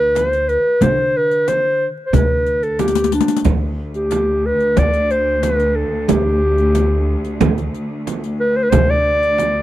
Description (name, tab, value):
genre	Turkish makam ensemble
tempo	91 BPM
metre	4/4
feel	straight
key	D makam hicaz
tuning	A4 = 441 Hz
part	mellow clarinet	melody	0.0-9.6 s	D4 to D5	-16 LUFS	equal	none
part	upright bass	bass	0.0-9.6 s	D2 to D3	-20 LUFS	equal	none
part	darbuka	percussion	0.2-3.0, 8.7-9.5 s	none	-23 LUFS	left 2 dB	none
part	frame drum	percussion	0.2-9.5 s	none	-20 LUFS	right 7 dB	none
part	riq	percussion	0.2-9.5 s	none	-22 LUFS	left 12 dB	none
part	bright symphonic cello section	drone	3.5-9.6 s	D2	-24 LUFS	left 1 dB	none
room	small room ambience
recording	dry, close 1970s-style studio recording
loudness	-14 LUFS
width	side -14 dB against mid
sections	0.0-3.5 A section; 3.5-9.6 B section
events	drum fill 2.8-3.5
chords	none